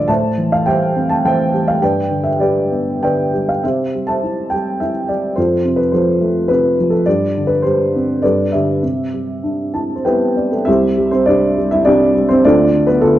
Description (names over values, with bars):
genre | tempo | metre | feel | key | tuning
classical, lyrical solo piano | 94-111 BPM | 3/4 | rubato | C major | A4 = 440 Hz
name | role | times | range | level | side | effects
dark upright piano | solo | 0.0-13.2 s | C2 to A5 | -13 LUFS | equal | none
room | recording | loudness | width
moderate recital hall reverb, RT60 1.4 s | dark, warm production | -13 LUFS | side -13 dB against mid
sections
0.0-10.7 A section; 10.7-13.2 A section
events
upright piano fill 9.4-10.7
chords
0.1 Am7; 1.8 G; 3.6 C; 5.4 F; 7.1 Gsus4; 8.2 Gadd9; 8.8 Cadd9; 10.7 C; 12.4 Dm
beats
| 0.09 0.66 1.24 | 1.81 2.40 3.02 | 3.63 4.22 4.81 | 5.36 5.91 6.49 | 7.06 7.64 8.23 | 8.82 9.43 10.05 | 10.67 11.27 11.86 | 12.44 13.02